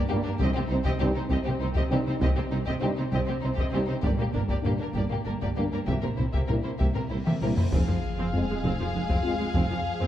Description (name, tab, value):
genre	cinematic, epic orchestral film score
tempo	66 BPM (dotted quarters)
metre	6/8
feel	straight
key	C minor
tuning	A4 = 440 Hz
part	rich symphonic viola section	accompaniment	0.0-10.1 s	F3 to C4	-35 LUFS	right 2 dB	none
part	rich symphonic cello section	bass	0.0-10.1 s	F2 to C3	-32 LUFS	right 2 dB	none
part	rich symphonic violin section	melody	0.1-10.1 s	G4 to F5	-36 LUFS	left 4 dB	none
part	clear chamber violin section	second line	0.1-10.1 s	Bb3 to Ab4	-36 LUFS	left 2 dB	none
part	warm French horn section	sustained chords	0.1-9.3 s	Bb3 to F4	-35 LUFS	left 4 dB	none
part	warm trombone section	sustained chords	0.1-9.4 s	F2 to Ab3	-37 LUFS	right 2 dB	none
part	mellow tuba	bass	0.1-9.6 s	F1 to C2	-34 LUFS	right 2 dB	none
part	rich symphonic double bass section	bass	0.1-9.6 s	F1 to C2	-34 LUFS	right 2 dB	none
part	taiko ensemble	drums	0.4-10.1 s	none	-29 LUFS	left 1 dB	none
part	cymbal swell and sub drop	sound effects	7.1-9.5 s	none	-38 LUFS	left 1 dB	none
room	wet scoring stage reverb, RT60 1.6 s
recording	dark, warm production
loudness	-24 LUFS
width	side -12 dB against mid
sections	0.0-7.7 A section; 7.7-10.1 B section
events	cymbal swell 7.1-7.7; drum fill 7.3-7.7; impact 7.7-9.5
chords	0.4 Cm; 4.0 Gm; 5.9 C7; 7.7 Fm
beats	| 0.42 1.31 | 2.22 3.13 | 4.04 4.95 | 5.88 6.80 | 7.73 8.64 | 9.54